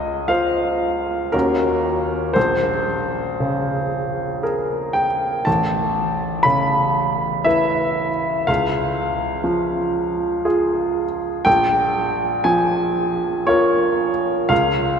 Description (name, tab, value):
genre	classical, impressionist solo piano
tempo	59 BPM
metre	3/4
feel	rubato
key	unclear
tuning	A4 = 440 Hz
part	clear baby grand piano	solo	0.0-15.0 s	A1 to B5	-17 LUFS	equal	none
room	wet cathedral reverb, RT60 5.0 s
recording	none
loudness	-17 LUFS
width	side -7 dB against mid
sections	0.0-15.0 A section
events	none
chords	0.0 Dbmaj7; 1.3 Ebm7; 2.4 Bbm9; 5.5 Aadd9; 8.5 Db; 11.5 Bbm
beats	0.31 1.34 | 2.36 3.40 4.44 | 5.47 6.45 7.47 | 8.49 9.47 10.46 | 11.47 12.46 13.47 | 14.51